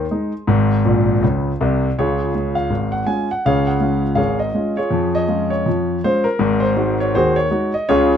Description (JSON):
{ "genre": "ragtime piano", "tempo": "81 BPM", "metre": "2/4", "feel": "swing 59% on 16ths", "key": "Db major", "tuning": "A4 = 441 Hz", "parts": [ { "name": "warm grand piano", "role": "solo", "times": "0.0-8.2 s", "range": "Ab1 to C6", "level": "-16 LUFS", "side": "equal", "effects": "none" } ], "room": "light reverb", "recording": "dark, warm production", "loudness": "-16 LUFS", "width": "side -8 dB against mid", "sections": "0.0-2.0 A section; 2.0-8.2 B section", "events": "grand piano fill 0.8-2.0", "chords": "0.0 Ab; 2.0 Db; 4.9 Db/F; 6.4 Ab5", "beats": "| 0.47 1.22 | 1.96 2.71 | 3.44 4.18 | 4.92 5.66 | 6.40 7.14 | 7.88" }